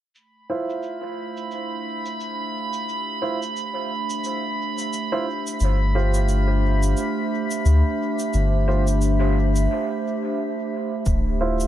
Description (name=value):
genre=ambient dub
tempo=88 BPM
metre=4/4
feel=swing 58% on 16ths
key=D dorian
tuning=A4 = 440 Hz
part: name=warbly tape-like pad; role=sustained chords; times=0.9-11.7 s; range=A3 to E5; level=-27 LUFS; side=right 2 dB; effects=chorus, built-in reverb
part: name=cabasa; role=drums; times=0.2-11.7 s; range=none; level=-36 LUFS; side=equal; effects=low-pass filter on perc, low-pass filter on room
part: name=drifting glass-harmonics texture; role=texture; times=0.7-9.7 s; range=B5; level=-31 LUFS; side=right 2 dB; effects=chorus, built-in reverb
part: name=warm upright piano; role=stabs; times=0.5-11.7 s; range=E4 to C5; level=-30 LUFS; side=right 2 dB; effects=low-pass filter, dub echo
part: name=soft dub sub bass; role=bass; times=5.6-11.7 s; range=D1 to D2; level=-19 LUFS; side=equal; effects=none
part: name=electronic kick drum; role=drums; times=11.1-11.2 s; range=none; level=-24 LUFS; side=equal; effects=none
room=light reverb, small room ambience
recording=none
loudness=-21 LUFS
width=side -12 dB against mid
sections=0.2-11.1 A section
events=break 9.7-11.1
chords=0.2 Dm9; 5.6 G7sus4; 11.1 Dm9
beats=| 0.15 0.84 1.52 2.20 | 2.88 3.56 4.25 4.93 | 5.61 6.29 6.97 7.65 | 8.34 9.02 9.70 10.38 | 11.06